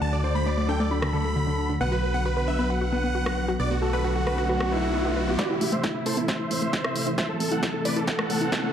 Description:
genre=uplifting trance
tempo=134 BPM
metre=4/4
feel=straight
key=unclear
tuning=A4 = 441 Hz
part: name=big supersaw lead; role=melody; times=0.0-8.7 s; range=E4 to B5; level=-30 LUFS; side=right 1 dB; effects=sidechain pumping, low-pass filter, digital delay
part: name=warm concert grand piano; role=second line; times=0.0-5.3 s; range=E4 to D5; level=-32 LUFS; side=left 2 dB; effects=tape echo
part: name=wide unison pluck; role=second line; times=0.0-8.7 s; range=E4 to B5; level=-36 LUFS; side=right 1 dB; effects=none
part: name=lush unison pad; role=sustained chords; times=0.0-8.7 s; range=C3 to F#4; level=-30 LUFS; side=equal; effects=chorus, sidechain pumping
part: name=wide unison pluck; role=arpeggios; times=0.0-8.7 s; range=D3 to B4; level=-31 LUFS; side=left 1 dB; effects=sidechain pumping, digital delay
part: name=solid FM bass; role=bass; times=0.0-8.7 s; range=A1 to A2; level=-29 LUFS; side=equal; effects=sidechain pumping, high-pass filter
part: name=house drum kit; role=drums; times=1.0-8.6 s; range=hi-hat, rim click, snare drum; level=-31 LUFS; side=equal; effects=high-pass filter on snare, studio reverb, sidechain pumping on hats, high-pass filter on hats
part: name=riser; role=sound effects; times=3.1-8.7 s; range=none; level=-34 LUFS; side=equal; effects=none
part: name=electronic kick drum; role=drums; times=5.4-8.6 s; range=none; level=-31 LUFS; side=right 1 dB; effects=high-pass filter on kick, studio reverb
room=moderate lush hall reverb, RT60 1.9 s, digital ambience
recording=dark, warm production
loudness=-23 LUFS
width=side -9 dB against mid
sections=0.0-5.4 A section; 5.4-8.7 B section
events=filter sweep on synth arpeggio sound 0.0-5.4; riser 3.1-5.4, 5.4-8.7; build-up 5.4-8.7; drum fill 5.4-8.7; filter sweep on supersaw synth 5.4-8.7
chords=0.0 D; 1.8 Bm; 5.4 Am

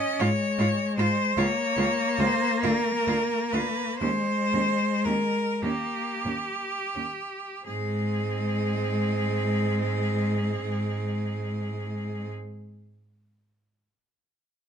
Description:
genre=classical, lyrical piece for cello ensemble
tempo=27-52 BPM (dotted quarters)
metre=6/8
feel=rubato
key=Ab major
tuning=A4 = 441 Hz
part: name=clear cello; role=melody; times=0.0-12.3 s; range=G4 to Eb5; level=-28 LUFS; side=equal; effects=none
part: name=rich cello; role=accompaniment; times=0.0-12.3 s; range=Ab3 to Db4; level=-29 LUFS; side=left 3 dB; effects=none
part: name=rich cello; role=second line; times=0.2-12.3 s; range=C4 to F4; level=-34 LUFS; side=right 7 dB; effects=none
part: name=clear cello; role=bass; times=0.2-12.3 s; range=Db2 to Ab2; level=-29 LUFS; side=right 1 dB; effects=none
room=little or no reverb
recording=close, detailed microphones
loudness=-24 LUFS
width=side -8 dB against mid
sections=0.0-7.7 A section; 7.7-11.5 B section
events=slowing down 0.2-7.7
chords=0.0 Db5/Ab; 1.4 N.C.; 2.6 Bb/D; 4.0 Ebsus4; 7.7 Ab

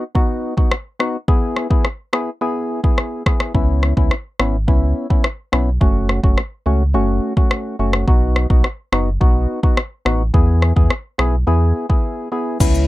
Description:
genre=dancehall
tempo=106 BPM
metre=4/4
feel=straight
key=unclear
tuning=A4 = 440 Hz
part: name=percussive organ stab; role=accompaniment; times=0.0-12.9 s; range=A3 to G#4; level=-21 LUFS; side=left 1 dB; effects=chorus, sidechain pumping
part: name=afro-pop drum kit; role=drums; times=0.2-12.9 s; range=crash cymbal, kick drum, rim click, shaker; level=-15 LUFS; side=equal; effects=none
part: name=sub bass with octave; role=bass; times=3.5-12.9 s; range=F#1 to E2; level=-16 LUFS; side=equal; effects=none
part: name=mellow French horn section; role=sustained chords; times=12.6-12.9 s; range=C#3 to E4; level=-24 LUFS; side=left 1 dB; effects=sidechain pumping
room=little or no reverb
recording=dark, warm production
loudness=-15 LUFS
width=side -17 dB against mid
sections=0.0-12.6 A section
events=break 12.0-12.6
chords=0.0 B; 1.3 E; 3.5 C#m7; 5.8 F#m; 8.1 B; 10.3 E

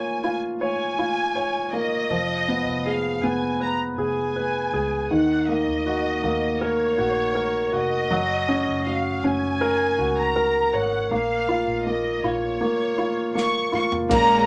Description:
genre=pop ballad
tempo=80 BPM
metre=4/4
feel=straight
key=unclear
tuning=A4 = 441 Hz
part: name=warm studio violin section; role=melody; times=0.0-14.5 s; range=Db5 to Db6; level=-28 LUFS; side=equal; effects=none
part: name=warm grand piano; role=accompaniment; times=0.0-14.5 s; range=Eb3 to Db5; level=-25 LUFS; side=equal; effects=none
part: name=vintage muted fingered electric bass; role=bass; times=2.1-14.5 s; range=F1 to Eb2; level=-36 LUFS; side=equal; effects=none
part: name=modern studio drum kit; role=drums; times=13.4-14.3 s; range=crash cymbal, kick drum, snare drum, toms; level=-32 LUFS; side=equal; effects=none
part: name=warm studio string section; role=sustained chords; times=14.1-14.5 s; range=Bb2 to Db4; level=-29 LUFS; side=equal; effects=none
part: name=picked steel-string acoustic guitar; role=arpeggios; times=14.1-14.5 s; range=Bb2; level=-32 LUFS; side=equal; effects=none
room=wet small room ambience, RT60 0.5 s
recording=none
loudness=-23 LUFS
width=mono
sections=0.0-14.1 A section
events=drum fill 13.4-14.1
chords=0.0 Bbm7; 2.1 Fm7b5; 5.1 Ebm7; 8.1 Gb; 11.1 Bbm

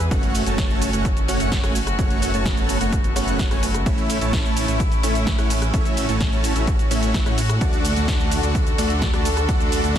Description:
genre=EDM, festival progressive house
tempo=128 BPM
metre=4/4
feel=straight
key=A major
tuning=A4 = 440 Hz
part: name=rich chamber string section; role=sustained chords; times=0.0-10.0 s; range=D3 to A4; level=-27 LUFS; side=equal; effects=sidechain pumping
part: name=detuned saw bass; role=bass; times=0.0-10.0 s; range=F#1 to A2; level=-25 LUFS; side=equal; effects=tube saturation, sidechain pumping
part: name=house drum kit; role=drums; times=0.0-10.0 s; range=cabasa, hi-hat, ride cymbal, rim click, snare drum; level=-28 LUFS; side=equal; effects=none
part: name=dense compressed supersaw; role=riff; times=0.1-10.0 s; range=A3 to A5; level=-24 LUFS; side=right 1 dB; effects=sidechain pumping, tape echo
part: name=electronic kick drum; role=drums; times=0.1-10.0 s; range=none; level=-22 LUFS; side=equal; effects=overdrive
room=digital ambience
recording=dense, heavily limited modern master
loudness=-18 LUFS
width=side -10 dB against mid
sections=0.0-10.0 A section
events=none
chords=0.1 F#m; 3.9 A; 7.6 D

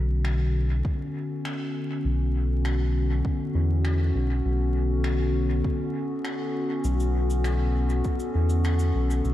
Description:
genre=ambient dub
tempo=100 BPM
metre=4/4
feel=straight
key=B minor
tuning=A4 = 441 Hz
part: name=warbly tape-like pad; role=sustained chords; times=0.0-9.3 s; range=D3 to A4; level=-28 LUFS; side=left 2 dB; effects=chorus, built-in reverb
part: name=round analog bass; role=bass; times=0.0-9.3 s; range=B1 to E2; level=-23 LUFS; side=equal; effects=none
part: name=finger snaps and cabasa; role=drums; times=0.2-9.3 s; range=none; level=-40 LUFS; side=equal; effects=dub echo
part: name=electronic kick drum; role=drums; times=0.8-8.2 s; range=none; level=-29 LUFS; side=equal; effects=overdrive
room=light reverb, studio reverb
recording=vinyl crackle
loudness=-23 LUFS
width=side -14 dB against mid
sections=0.0-9.3 A section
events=none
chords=0.0 Bm9

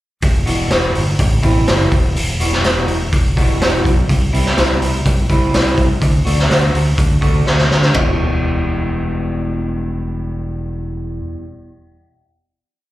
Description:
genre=quiet-loud alternative rock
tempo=124 BPM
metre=4/4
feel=straight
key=E minor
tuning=A4 = 440 Hz
part: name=growling fingered electric bass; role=bass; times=0.2-11.2 s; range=E1 to D3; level=-18 LUFS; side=equal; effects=overdrive
part: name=raw garage drum kit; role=drums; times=0.2-8.1 s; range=hi-hat, kick drum, ride cymbal, snare drum, toms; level=-16 LUFS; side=equal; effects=none
part: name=electric guitar through a small old amp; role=arpeggios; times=0.5-11.5 s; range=E2 to F#4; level=-22 LUFS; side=equal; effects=wide subtle chorus, tape echo, slapback echo
room=little or no reverb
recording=live gig heard through the venue's PA, club reverb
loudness=-13 LUFS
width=side -15 dB against mid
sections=0.2-8.0 verse; 8.0-11.8 final chord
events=drum fill 7.5-8.0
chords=0.2 Emadd9; 1.2 Amadd9; 1.9 Emadd9; 4.1 C; 6.0 D; 8.0 Emadd9

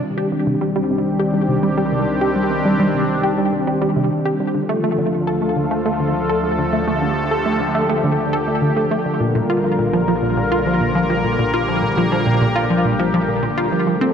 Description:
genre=ambient, sequencer-driven space music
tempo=103 BPM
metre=4/4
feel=straight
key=unclear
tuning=A4 = 442 Hz
part: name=sweeping resonant pad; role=sustained chords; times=0.0-14.1 s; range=C3 to Bb4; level=-19 LUFS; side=left 1 dB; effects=chorus
part: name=tight sequenced synth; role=riff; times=0.0-14.1 s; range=Bb2 to A4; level=-19 LUFS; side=right 1 dB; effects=chorus, tape echo
part: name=fat analog bass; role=bass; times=0.0-14.1 s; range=F1 to D2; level=-32 LUFS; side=equal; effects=none
room=wet lush hall reverb, RT60 2.7 s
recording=dreamy mix soaked in reverb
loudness=-16 LUFS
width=side -7 dB against mid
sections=0.0-14.1 A section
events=fade-in on analog synth bass 0.0-14.1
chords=0.0 Cmadd9; 4.5 Dm; 9.2 Bb6

